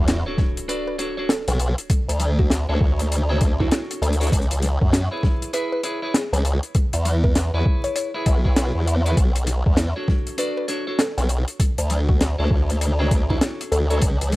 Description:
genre	glitch hop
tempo	99 BPM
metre	4/4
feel	swing 62% on 16ths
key	B dorian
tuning	A4 = 441 Hz
part	clean electric guitar	stabs	0.0-14.0 s	D4 to E5	-29 LUFS	equal	sidechain pumping, analog delay
part	formant-sweep wobble bass	bass	0.0-14.4 s	B1 to F#2	-20 LUFS	equal	chorus
part	impact	sound effects	0.0-1.9 s	none	-40 LUFS	equal	none
part	deep reggae drum kit	drums	0.1-14.4 s	hi-hat, snare drum	-24 LUFS	left 1 dB	studio reverb
part	electronic kick drum	drums	0.4-14.2 s	none	-20 LUFS	equal	overdrive, studio reverb
part	woody wave-folded pluck	melody	0.7-14.0 s	E4 to E5	-29 LUFS	equal	chorus, analog delay
room	little or no reverb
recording	dry, gritty hardware recording, vinyl crackle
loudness	-18 LUFS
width	side -19 dB against mid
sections	0.0-14.4 A section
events	impact 0.0-1.9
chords	0.0 Bm9 (rootless); 4.3 C#m7; 9.2 Bm9

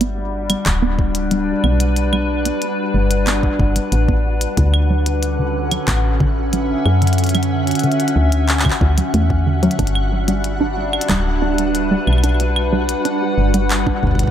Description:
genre	IDM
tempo	92 BPM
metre	4/4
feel	straight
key	G lydian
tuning	A4 = 440 Hz
part	glassy FM pad	sustained chords	0.0-14.3 s	D3 to F#5	-20 LUFS	equal	ensemble chorus, built-in reverb, vintage 12-bit sampler grit, sidechain pumping
part	warbly dusty pluck	arpeggios	0.0-13.9 s	D3 to D4	-22 LUFS	right 2 dB	wide subtle chorus, dub echo
part	woody FM bass	bass	0.0-14.2 s	D1 to F#2	-18 LUFS	equal	none
part	glitchy drum kit	drums	0.0-14.3 s	claves, handclaps, hi-hat	-23 LUFS	equal	overdrive, studio reverb, analog delay
part	flickering grainy texture	texture	0.0-14.3 s	F#4 to F#5	-28 LUFS	left 2 dB	built-in reverb
part	electronic kick drum	drums	0.7-14.3 s	none	-20 LUFS	equal	overdrive, studio reverb
room	moderate spring reverb, RT60 2.5 s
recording	echo-heavy mix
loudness	-15 LUFS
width	side -10 dB against mid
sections	0.0-14.3 A section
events	filter sweep on synth arpeggio sound 0.0-14.3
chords	0.0 Gmaj7; 4.6 Dmaj9; 9.8 Gmaj7

